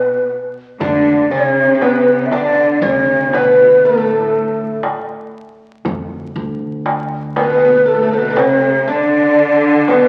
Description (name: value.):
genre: Arabic maqam ensemble.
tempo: 119 BPM (eighths).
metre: 10/8.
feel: straight.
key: unclear.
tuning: A4 = 441 Hz.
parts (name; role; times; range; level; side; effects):
breathy ney; melody; 0.0-10.1 s; A4 to E5; -15 LUFS; equal; none.
oud; second line; 0.0-10.1 s; A3 to D4; -21 LUFS; equal; none.
rich symphonic cello section; second line; 0.0-10.1 s; A2 to D3; -20 LUFS; equal; none.
upright bass; bass; 0.8-8.3 s; D2; -28 LUFS; equal; none.
darbuka; percussion; 0.8-10.1 s; none; -26 LUFS; equal; none.
room: wet large studio reverb, RT60 1.5 s.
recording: very old 78 rpm record, vinyl crackle.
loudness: -14 LUFS.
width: mono.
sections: 0.0-10.1 A section.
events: none.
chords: none.